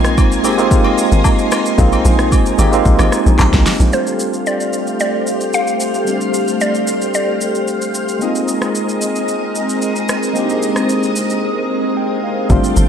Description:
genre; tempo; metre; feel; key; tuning
amapiano; 112 BPM; 4/4; straight; unclear; A4 = 442 Hz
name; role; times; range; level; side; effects
tine electric piano; accompaniment; 0.0-12.9 s; G3 to G5; -18 LUFS; right 1 dB; medium stereo tremolo
ensemble organ-string; sustained chords; 0.0-12.9 s; Ab3 to Ab5; -19 LUFS; equal; ensemble chorus, sidechain pumping
tight log drum bass; bass; 0.0-3.9, 12.5-12.9 s; G1 to C2; -14 LUFS; equal; none
deep house drum kit; drums; 0.0-12.9 s; handclaps, hi-hat, kick drum, rim click, shaker, snare drum; -18 LUFS; equal; none
agogo bells and woodblock; percussion; 0.2-3.8 s; none; -25 LUFS; left 5 dB; none
mallet-like synth pluck; melody; 3.9-7.9 s; C5 to F5; -21 LUFS; equal; chorus, ping-pong delay
room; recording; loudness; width
moderate plate reverb, RT60 2.1 s; dreamy mix soaked in reverb; -13 LUFS; side -8 dB against mid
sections
0.0-3.9 A section; 3.9-12.5 B section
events
drop 0.0-3.9; break 11.4-12.5; tine electric piano fill 11.7-12.5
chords
0.0 Bb9sus4; 3.9 G9sus4; 8.2 Bb9sus4

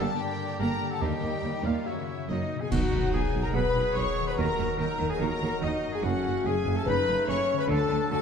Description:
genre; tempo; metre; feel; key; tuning
cinematic, heroic adventure film score; 144 BPM; 4/4; straight; B major; A4 = 440 Hz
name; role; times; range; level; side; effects
rich symphonic violin section; melody; 0.0-8.2 s; Eb5 to C#6; -38 LUFS; left 5 dB; none
clear chamber violin section; second line; 0.0-8.2 s; C#4 to C#6; -39 LUFS; left 3 dB; none
clear oboe; second line; 0.0-8.2 s; Eb4 to C#5; -38 LUFS; right 2 dB; none
mellow hollow silver concert flute; second line; 0.0-8.2 s; C#5 to C#6; -39 LUFS; equal; none
clear studio viola section; accompaniment; 0.0-8.2 s; F#3 to C#5; -35 LUFS; right 1 dB; none
clear trombone section; sustained chords; 0.0-8.2 s; C#3 to A3; -39 LUFS; right 4 dB; none
warm French horn section; sustained chords; 0.0-8.2 s; Bb3 to C#5; -31 LUFS; left 5 dB; none
concert harp; arpeggios; 0.0-8.2 s; F#2 to Bb5; -38 LUFS; left 9 dB; none
clear chamber cello section; bass; 0.0-8.2 s; Eb2 to D#3; -36 LUFS; right 3 dB; none
rich symphonic double bass section; bass; 0.0-8.2 s; F#1 to Eb2; -34 LUFS; right 4 dB; none
warm clarinet; second line; 2.7-8.2 s; C#4 to G#4; -36 LUFS; left 2 dB; none
dark tuba; bass; 2.7-8.2 s; F#1 to D#2; -35 LUFS; right 4 dB; none
clash cymbals and concert bass drum; percussion; 2.7-3.5 s; none; -34 LUFS; equal; none
room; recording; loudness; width
wet scoring stage reverb, RT60 1.5 s; dark, warm production; -25 LUFS; side -6 dB against mid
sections
0.0-2.7 A section; 2.7-8.2 B section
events
band accent 2.7-3.1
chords
0.0 Gm; 1.0 Eb; 1.9 F#7; 2.7 B; 4.4 D#m; 6.0 F#m; 7.7 D

